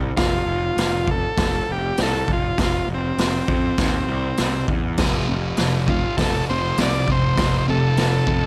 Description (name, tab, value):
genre	garage rock duo or trio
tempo	100 BPM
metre	4/4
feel	straight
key	F major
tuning	A4 = 441 Hz
part	fuzz picked electric bass	bass	0.0-8.5 s	F1 to F2	-27 LUFS	equal	overdrive
part	overdriven combo organ	melody	0.2-8.5 s	C4 to D5	-26 LUFS	equal	none
part	raw garage drum kit	drums	0.2-8.4 s	hi-hat, kick drum, snare drum	-26 LUFS	equal	none
part	thick fuzz guitar	riff	5.0-8.5 s	F2 to F3	-24 LUFS	equal	distortion
room	light reverb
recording	none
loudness	-21 LUFS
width	mono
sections	0.0-8.5 A section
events	none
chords	0.2 F; 3.8 Cm; 4.4 C; 5.0 F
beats	| 0.18 0.78 1.38 1.98 | 2.58 3.18 3.78 4.38 | 4.98 5.58 6.17 6.77 | 7.37 7.97